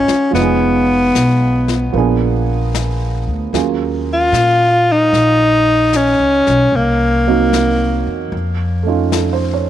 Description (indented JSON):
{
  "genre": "jazz ballad",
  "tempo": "75 BPM",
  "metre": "4/4",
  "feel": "swing 67% on 8ths",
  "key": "unclear",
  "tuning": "A4 = 440 Hz",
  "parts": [
    { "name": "clear tenor saxophone", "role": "melody", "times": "0.0-8.3 s", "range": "Bb3 to F4", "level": "-13 LUFS", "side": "left 1 dB", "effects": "tape echo" },
    { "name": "warm upright piano", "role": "accompaniment", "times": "0.0-9.7 s", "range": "F3 to Db5", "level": "-19 LUFS", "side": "right 11 dB", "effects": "none" },
    { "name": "upright bass", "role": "bass", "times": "0.0-9.7 s", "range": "F1 to Bb2", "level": "-18 LUFS", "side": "left 1 dB", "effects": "none" },
    { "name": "jazz brush drum kit", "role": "drums", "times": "0.1-9.7 s", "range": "brushed snare drum, hi-hat, snare drum", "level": "-26 LUFS", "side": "left 11 dB", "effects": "none" }
  ],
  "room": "light reverb, studio reverb",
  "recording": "1960s-style stereo with parts hard left and right",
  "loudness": "-12 LUFS",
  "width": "side -11 dB against mid",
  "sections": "0.0-9.7 A section",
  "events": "none",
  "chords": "0.3 Fm7b5; 1.9 Bb7b9; 3.5 Ebm11; 6.7 Cm7b5; 8.3 F7b13",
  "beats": "| 0.34 1.14 1.94 2.73 | 3.53 4.33 5.13 5.93 | 6.73 7.53 8.32 9.12"
}